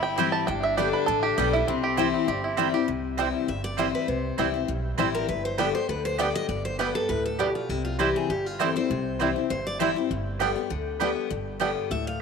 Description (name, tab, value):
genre	bluegrass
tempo	199 BPM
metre	4/4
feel	swing 54% on 8ths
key	C major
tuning	A4 = 439 Hz
part	bluegrass banjo	melody	0.0-11.7 s	G3 to A5	-30 LUFS	right 6 dB	slapback echo
part	clear fiddle	second line	0.0-2.7 s	C4 to E4	-32 LUFS	left 8 dB	none
part	picked steel-string acoustic guitar	accompaniment	0.0-12.2 s	G2 to G4	-28 LUFS	left 10 dB	none
part	upright bass	bass	0.0-12.2 s	G1 to D2	-34 LUFS	right 2 dB	none
part	mandolin	stabs	0.2-11.7 s	B3 to G5	-31 LUFS	right 13 dB	none
part	picked steel-string acoustic guitar	melody	3.5-12.2 s	E4 to F5	-30 LUFS	right 1 dB	none
room	moderate plate reverb, RT60 3.3 s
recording	1960s-style stereo with parts hard left and right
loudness	-24 LUFS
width	side -5 dB against mid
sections	0.0-2.9 A section; 2.9-12.2 B section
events	five-string banjo solo 0.0-2.9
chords	0.5 G; 1.7 C; 5.3 G; 7.7 C; 10.1 G